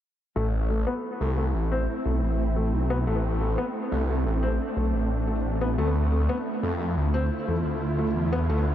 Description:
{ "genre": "drum and bass", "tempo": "177 BPM", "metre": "4/4", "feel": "straight", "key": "A minor", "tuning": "A4 = 439 Hz", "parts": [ { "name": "swarming drone", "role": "sustained chords", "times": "1.0-8.7 s", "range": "D3 to F4", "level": "-30 LUFS", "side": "right 1 dB", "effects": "built-in reverb" }, { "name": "felt-muted upright piano", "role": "arpeggios", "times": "0.4-8.6 s", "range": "A3 to C4", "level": "-30 LUFS", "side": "left 3 dB", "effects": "low-pass filter, diffuse ambient delay" }, { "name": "phased detuned saw bass", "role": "bass", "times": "0.4-8.7 s", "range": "A1 to F2", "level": "-25 LUFS", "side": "equal", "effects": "phaser, overdrive" } ], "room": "moderate huge ambient reverb, RT60 7.4 s", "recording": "dreamy mix soaked in reverb", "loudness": "-24 LUFS", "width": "side -11 dB against mid", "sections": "0.4-8.7 A section", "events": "filter sweep on felt piano 0.4-8.7", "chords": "0.4 Am; 5.8 Dm", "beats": "| 0.36 0.70 1.04 1.38 | 1.72 2.05 2.39 2.73 | 3.07 3.41 3.75 4.09 | 4.43 4.77 5.11 5.44 | 5.78 6.12 6.46 6.80 | 7.14 7.48 7.82 8.16 | 8.49" }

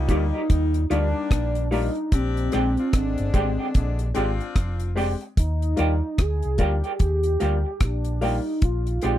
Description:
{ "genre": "lovers rock reggae", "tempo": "74 BPM", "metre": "4/4", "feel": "swing 61% on 16ths", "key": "Eb major", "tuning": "A4 = 441 Hz", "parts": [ { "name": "warm velvety synth lead", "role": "melody", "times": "0.0-9.2 s", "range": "C4 to Ab4", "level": "-28 LUFS", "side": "equal", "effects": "chorus, tape echo" }, { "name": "mellow saxophone section", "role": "second line", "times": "0.0-4.9 s", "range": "D3 to G4", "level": "-32 LUFS", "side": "left 6 dB", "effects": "none" }, { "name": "hollow-body short-scale fingered electric bass", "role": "bass", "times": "0.0-9.2 s", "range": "F1 to Eb2", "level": "-24 LUFS", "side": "equal", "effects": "none" }, { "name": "warm baby grand piano", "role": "accompaniment", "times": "0.1-9.2 s", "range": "G3 to G4", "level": "-28 LUFS", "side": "left 4 dB", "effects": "none" }, { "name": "electric guitar through a small old amp", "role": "stabs", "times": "0.1-9.2 s", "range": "Eb4 to G5", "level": "-29 LUFS", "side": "right 5 dB", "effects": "tremolo" }, { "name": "deep reggae drum kit", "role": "drums", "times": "0.1-9.2 s", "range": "hi-hat, kick drum, rim click", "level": "-22 LUFS", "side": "equal", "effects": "none" } ], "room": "little or no reverb", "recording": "dry, close 1970s-style studio recording", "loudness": "-21 LUFS", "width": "side -12 dB against mid", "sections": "0.0-9.2 A section", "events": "none", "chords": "0.0 Ebmaj7; 2.1 Bb13; 5.4 Ebmaj7; 8.6 Bb13", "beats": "0.49 1.31 | 2.12 2.93 3.75 4.56 | 5.37 6.18 7.00 7.81 | 8.62" }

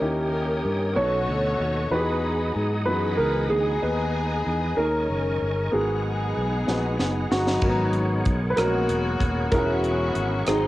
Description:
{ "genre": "slow gospel", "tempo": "63 BPM (dotted quarters)", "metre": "6/8", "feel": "straight", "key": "G# minor", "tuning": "A4 = 440 Hz", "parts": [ { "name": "clear grand piano", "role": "melody", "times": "0.0-10.7 s", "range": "F#4 to C#5", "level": "-28 LUFS", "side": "right 2 dB", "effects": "cassette tape" }, { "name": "warm chamber string section", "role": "melody", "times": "0.0-10.7 s", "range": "F#3 to C#5", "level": "-27 LUFS", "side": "left 2 dB", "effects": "cassette tape, plate reverb" }, { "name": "warm baby grand piano", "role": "accompaniment", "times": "0.0-10.7 s", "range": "G#2 to C#5", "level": "-30 LUFS", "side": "left 2 dB", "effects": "cassette tape" }, { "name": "bright tonewheel organ", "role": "sustained chords", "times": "0.0-10.7 s", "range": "B3 to D#6", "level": "-34 LUFS", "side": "right 1 dB", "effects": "chorus vibrato, fast rotary speaker, cassette tape, plate reverb" }, { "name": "rich symphonic string section", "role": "sustained chords", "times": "0.0-10.7 s", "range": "C#3 to D#5", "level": "-40 LUFS", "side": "equal", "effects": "none" }, { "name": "fingered electric bass", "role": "bass", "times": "0.0-10.7 s", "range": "D#1 to G#2", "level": "-28 LUFS", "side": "equal", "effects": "none" }, { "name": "crisp fusion drum kit", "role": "drums", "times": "6.7-10.6 s", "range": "crash cymbal, hi-hat, kick drum, rim click, snare drum", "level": "-27 LUFS", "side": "equal", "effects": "cassette tape" } ], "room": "moderate studio reverb, RT60 0.5 s", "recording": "home recording on cassette", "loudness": "-21 LUFS", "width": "side -16 dB against mid", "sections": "0.0-7.6 A section; 7.6-10.7 A section", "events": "drum fill 6.7-7.6", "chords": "0.0 D#7b9; 1.0 B9; 1.9 Emaj9; 3.8 G#m/D#; 4.8 D#7sus4; 5.7 G#m9; 7.6 G#m11; 9.5 E69", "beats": "| 0.02 0.97 | 1.92 2.87 | 3.82 4.77 | 5.72 6.67 | 7.62 8.57 | 9.52 10.47" }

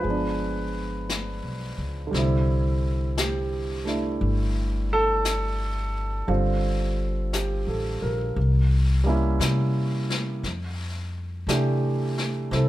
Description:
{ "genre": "jazz ballad", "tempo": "58 BPM", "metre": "4/4", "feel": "swing 66% on 8ths", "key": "C major", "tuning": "A4 = 444 Hz", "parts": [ { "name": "warm concert grand piano", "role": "accompaniment", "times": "0.0-12.7 s", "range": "D3 to B4", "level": "-27 LUFS", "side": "right 2 dB", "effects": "none" }, { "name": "upright bass", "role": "bass", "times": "0.0-12.7 s", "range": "G1 to C3", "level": "-25 LUFS", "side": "left 1 dB", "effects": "none" }, { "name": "jazz brush drum kit", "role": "drums", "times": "0.1-12.7 s", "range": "brushed snare drum, hi-hat, snare drum", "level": "-33 LUFS", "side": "left 4 dB", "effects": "none" } ], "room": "light reverb", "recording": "none", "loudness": "-23 LUFS", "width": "side -15 dB against mid", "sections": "0.0-2.1 A section; 2.1-12.7 B section", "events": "none", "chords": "0.1 G7b9; 2.1 C69; 6.3 Gm9; 8.4 C7b9; 10.4 F69", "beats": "0.05 1.09 | 2.13 3.17 4.21 5.25 | 6.29 7.33 8.37 9.41 | 10.44 11.48 12.52" }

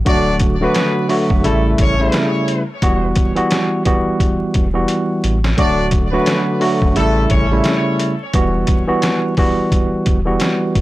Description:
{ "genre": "hip hop, boom-bap hip-hop", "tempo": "87 BPM", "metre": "4/4", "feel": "swing 58% on 16ths", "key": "E dorian", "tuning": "A4 = 440 Hz", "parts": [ { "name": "warm sub bass", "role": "bass", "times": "0.0-10.8 s", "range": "D1 to A1", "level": "-20 LUFS", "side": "equal", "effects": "none" }, { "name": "tine electric piano", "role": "accompaniment", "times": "0.1-10.8 s", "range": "C#3 to F#4", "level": "-16 LUFS", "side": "right 1 dB", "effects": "medium stereo tremolo, cassette tape" }, { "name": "warm horn section", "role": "stabs", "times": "0.1-7.8 s", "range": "A3 to D5", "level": "-22 LUFS", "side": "left 2 dB", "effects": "tape echo" }, { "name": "trip hop sampler-style drum kit", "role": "drums", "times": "0.1-10.8 s", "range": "hi-hat, kick drum, snare drum", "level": "-18 LUFS", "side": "equal", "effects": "none" } ], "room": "little or no reverb", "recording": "dry, gritty hardware recording, transformer saturation, vinyl crackle", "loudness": "-13 LUFS", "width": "side -17 dB against mid", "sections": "0.0-10.8 A section", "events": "drum fill 4.9-5.6", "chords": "0.1 D; 1.4 A7; 2.8 Emadd9; 5.6 D; 7.0 A7; 8.3 Emadd9", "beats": "| 0.06 0.75 1.44 2.13 | 2.82 3.51 4.20 4.89 | 5.58 6.27 6.96 7.65 | 8.34 9.03 9.72 10.41" }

